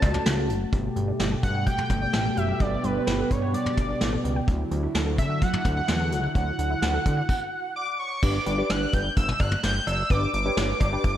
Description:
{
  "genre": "synth-pop",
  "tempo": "128 BPM",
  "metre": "4/4",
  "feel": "straight",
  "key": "unclear",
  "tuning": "A4 = 440 Hz",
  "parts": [
    { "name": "octave-doubled lead", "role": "melody", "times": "0.0-11.2 s", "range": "B4 to G6", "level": "-29 LUFS", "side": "equal", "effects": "chorus, tape echo" },
    { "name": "funky polysynth comp", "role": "accompaniment", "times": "0.0-0.2, 8.2-11.2 s", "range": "C#4 to D5", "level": "-30 LUFS", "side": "left 1 dB", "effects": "chorus" },
    { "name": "chorused pulse-width pad", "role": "sustained chords", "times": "0.0-7.3 s", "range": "B2 to G4", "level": "-30 LUFS", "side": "equal", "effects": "none" },
    { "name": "fat analog bass", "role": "bass", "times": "0.0-11.2 s", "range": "F#1 to D3", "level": "-27 LUFS", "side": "equal", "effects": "none" },
    { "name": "vintage brush drum kit", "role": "drums", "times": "0.0-11.2 s", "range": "cowbell, crash cymbal, hi-hat, kick drum, snare drum, toms", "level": "-26 LUFS", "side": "equal", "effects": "none" },
    { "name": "resonant blip pluck", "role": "arpeggios", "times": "0.7-7.3 s", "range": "F#3 to G5", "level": "-35 LUFS", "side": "right 2 dB", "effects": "phaser, tape echo" }
  ],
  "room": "moderate lush hall reverb, RT60 1.7 s, small room ambience",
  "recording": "dreamy mix soaked in reverb",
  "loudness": "-22 LUFS",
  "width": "side -11 dB against mid",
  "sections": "0.7-8.2 A section; 8.2-11.2 B section",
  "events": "stop 7.3-8.2",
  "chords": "0.0 F#m; 0.7 Gadd9; 4.5 Dadd9; 8.2 G"
}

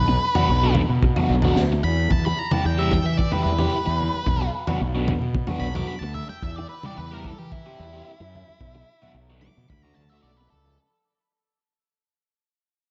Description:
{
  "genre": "psychedelic rock",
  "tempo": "111 BPM",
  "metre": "4/4",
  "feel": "straight",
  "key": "E minor",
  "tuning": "A4 = 439 Hz",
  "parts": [
    { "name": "octave-fuzz lead guitar", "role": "melody", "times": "0.0-10.8 s", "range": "E4 to D6", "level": "-31 LUFS", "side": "equal", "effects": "distortion, tape echo" },
    { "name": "fuzz fingered electric bass", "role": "bass", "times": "0.0-10.8 s", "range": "B1 to E3", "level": "-27 LUFS", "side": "equal", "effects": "overdrive" },
    { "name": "crunchy overdriven guitar", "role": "riff", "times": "0.1-10.4 s", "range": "D3 to G4", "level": "-29 LUFS", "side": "equal", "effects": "phaser" },
    { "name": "crunchy breakbeat drum kit", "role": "drums", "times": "0.4-9.8 s", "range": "kick drum, snare drum, toms", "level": "-27 LUFS", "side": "equal", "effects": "none" },
    { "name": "congas", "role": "percussion", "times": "2.5-10.8 s", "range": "none", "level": "-41 LUFS", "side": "equal", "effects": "none" }
  ],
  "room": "moderate lush hall reverb, RT60 2.0 s",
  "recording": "dreamy mix soaked in reverb, nothing above 7.8 kHz",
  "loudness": "-22 LUFS",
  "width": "mono",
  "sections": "0.0-10.8 A section",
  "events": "fade-out 0.0-10.8; lead electric guitar solo 0.0-10.8",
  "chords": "0.0 Bm; 2.1 Em; 4.3 Bm; 6.4 Em; 8.6 Bm; 9.7 D"
}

